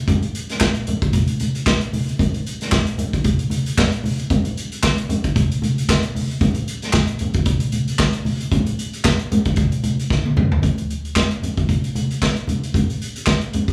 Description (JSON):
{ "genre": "disco", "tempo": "114 BPM", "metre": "4/4", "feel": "swing 56% on 16ths", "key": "none", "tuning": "none", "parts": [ { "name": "vintage drum kit", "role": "drums", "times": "0.1-13.7 s", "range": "handclaps, hi-hat, kick drum, snare drum, toms", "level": "-22 LUFS", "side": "equal", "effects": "none" }, { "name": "congas", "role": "percussion", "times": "0.1-13.7 s", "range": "none", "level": "-25 LUFS", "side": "equal", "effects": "none" } ], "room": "wet large studio reverb, RT60 1.2 s", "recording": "band playing live in one room, small room ambience", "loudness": "-20 LUFS", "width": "mono", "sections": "0.0-10.6 A section; 10.6-13.7 B section", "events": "drum fill 10.1-10.6", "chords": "none" }